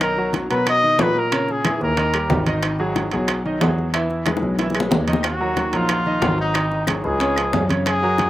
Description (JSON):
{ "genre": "latin, salsa", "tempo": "183 BPM", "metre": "4/4", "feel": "straight", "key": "Eb minor", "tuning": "A4 = 440 Hz", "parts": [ { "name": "warm trumpet", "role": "melody", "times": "0.0-2.4, 5.3-8.3 s", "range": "Eb4 to D#5", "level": "-21 LUFS", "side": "left 1 dB", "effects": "none" }, { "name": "clear concert grand piano", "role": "accompaniment", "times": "0.0-8.3 s", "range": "Db3 to E5", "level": "-24 LUFS", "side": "right 1 dB", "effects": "none" }, { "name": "dark grand piano", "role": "bass", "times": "0.0-8.3 s", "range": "Ab1 to B2", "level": "-24 LUFS", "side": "equal", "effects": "none" }, { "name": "bongos", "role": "percussion", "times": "0.0-8.3 s", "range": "none", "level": "-27 LUFS", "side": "left 4 dB", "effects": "none" }, { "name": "claves", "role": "percussion", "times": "0.0-8.0 s", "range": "none", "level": "-31 LUFS", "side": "left 6 dB", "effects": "none" }, { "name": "congas", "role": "percussion", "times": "0.0-8.3 s", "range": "none", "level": "-28 LUFS", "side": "equal", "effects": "none" }, { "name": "timbales", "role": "percussion", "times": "0.0-8.3 s", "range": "none", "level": "-27 LUFS", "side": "right 6 dB", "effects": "slapback echo" } ], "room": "little or no reverb", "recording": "recorded outdoors, with no room sound", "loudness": "-17 LUFS", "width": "side -14 dB against mid", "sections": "0.0-5.2 A section; 5.2-8.3 A section", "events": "drum fill 4.3-5.2", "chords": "0.0 Bmaj7; 1.3 Bbm7b5; 2.0 Eb; 2.6 Abm7; 3.9 E; 5.2 Ebm; 6.6 Ab5; 7.2 Db" }